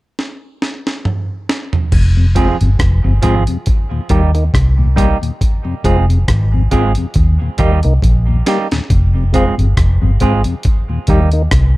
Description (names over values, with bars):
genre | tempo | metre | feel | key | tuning
roots reggae | 69 BPM | 4/4 | swing 56% on 16ths | F minor | A4 = 440 Hz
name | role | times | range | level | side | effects
breakbeat sampler-style drum kit | drums | 0.2-11.8 s | crash cymbal, hi-hat, kick drum, rim click, snare drum, toms | -16 LUFS | equal | none
vintage muted fingered electric bass | bass | 1.9-11.8 s | F1 to Eb2 | -12 LUFS | equal | none
mellow tonewheel organ | accompaniment | 2.2-11.4 s | Eb2 to F4 | -20 LUFS | left 3 dB | overdrive, chorus vibrato, slow rotary speaker
semi-hollow electric guitar | accompaniment | 2.4-11.3 s | F3 to Ab4 | -20 LUFS | right 4 dB | dub echo
room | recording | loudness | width
little or no reverb | none | -11 LUFS | side -19 dB against mid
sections
0.0-1.9 A section; 1.9-8.9 B section; 8.9-11.8 C section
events
drum fill 0.2-1.9, 8.0-8.9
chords
0.0 N.C.; 1.9 Fm; 3.7 Eb; 5.4 Fm; 7.2 Eb; 8.9 Fm; 10.6 Eb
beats
0.18 1.05 | 1.92 2.79 3.67 4.54 | 5.41 6.28 7.15 8.03 | 8.90 9.77 10.65 11.52